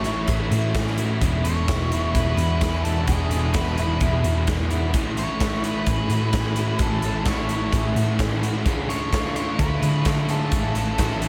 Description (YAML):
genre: rock, shoegaze and dream pop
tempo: 129 BPM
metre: 4/4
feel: straight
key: A major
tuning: A4 = 439 Hz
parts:
  - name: octave-fuzz lead guitar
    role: melody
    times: 0.0-11.3 s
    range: G#4 to C#5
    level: -33 LUFS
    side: equal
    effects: distortion, tape echo
  - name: picked twelve-string acoustic guitar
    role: arpeggios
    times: 0.0-11.3 s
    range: E4 to A4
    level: -35 LUFS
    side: equal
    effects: lush chorus, tape echo
  - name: crunchy overdriven guitar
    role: riff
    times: 0.0-11.3 s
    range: E2 to F4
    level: -31 LUFS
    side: equal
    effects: reverse reverb
  - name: thick fuzz guitar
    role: riff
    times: 0.0-11.3 s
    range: E2 to D4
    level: -31 LUFS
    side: equal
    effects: distortion, lush chorus
  - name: hollow-body short-scale picked electric bass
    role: bass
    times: 0.0-11.3 s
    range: E1 to D3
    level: -27 LUFS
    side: equal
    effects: none
  - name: big rock drum kit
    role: drums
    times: 0.0-11.3 s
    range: hi-hat, kick drum, snare drum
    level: -28 LUFS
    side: equal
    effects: none
room: wet huge ambient reverb, RT60 7.8 s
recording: dreamy mix soaked in reverb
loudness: -22 LUFS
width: mono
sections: 0.0-11.3 A section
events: none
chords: 0.0 Amaj7; 1.2 E7; 4.9 Amaj7; 8.7 Dmadd9; 10.5 Amaj7